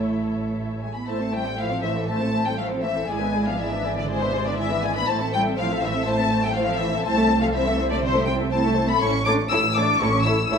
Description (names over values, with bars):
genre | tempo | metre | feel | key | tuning
quick classical-period movement for string orchestra | 121 BPM | 4/4 | rubato | A minor | A4 = 441 Hz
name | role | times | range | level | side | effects
muted studio violin section | melody | 0.0-10.6 s | A4 to E6 | -24 LUFS | left 5 dB | none
muted symphonic violin section | second line | 0.0-10.6 s | G#4 to E5 | -28 LUFS | left 2 dB | none
muted symphonic viola section | accompaniment | 0.0-10.6 s | G#3 to E4 | -29 LUFS | right 2 dB | none
muted symphonic cello section | bass | 0.0-10.6 s | C3 to E4 | -27 LUFS | right 2 dB | none
muted symphonic double bass section | bass | 0.0-10.6 s | G#1 to C2 | -28 LUFS | right 3 dB | none
room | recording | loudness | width
wet recital hall reverb, RT60 1.3 s | none | -20 LUFS | side -6 dB against mid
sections
0.0-1.1 A section; 1.1-10.6 B section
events
none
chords
0.0 A; 1.1 Am; 3.1 E7/G#; 5.1 Am; 7.1 Am/C; 9.0 A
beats
0.04 0.56 | 1.08 1.58 2.09 2.59 | 3.09 3.59 4.09 4.59 | 5.08 5.58 6.08 6.56 | 7.05 7.55 8.04 8.53 | 9.02 9.52 10.01 10.50